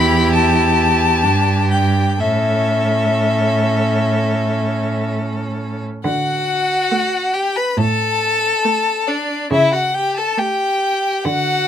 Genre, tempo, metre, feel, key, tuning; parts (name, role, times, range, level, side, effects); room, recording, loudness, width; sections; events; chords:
classical, slow romantic movement for string quartet; 61-70 BPM; 4/4; rubato; D major; A4 = 440 Hz
rich violin; melody; 0.0-11.7 s; D5 to B5; -18 LUFS; left 4 dB
rich violin; second line; 0.0-11.7 s; D4 to B4; -22 LUFS; left 1 dB
rich viola; accompaniment; 0.0-11.0 s; A3 to E4; -24 LUFS; right 4 dB
rich cello; bass; 0.0-11.7 s; E2 to D3; -19 LUFS; right 2 dB
light reverb; close, detailed microphones; -15 LUFS; side -9 dB against mid
0.0-6.0 A section; 6.0-11.7 B section
0.0 Em; 2.2 A; 6.0 D; 9.5 A7/C#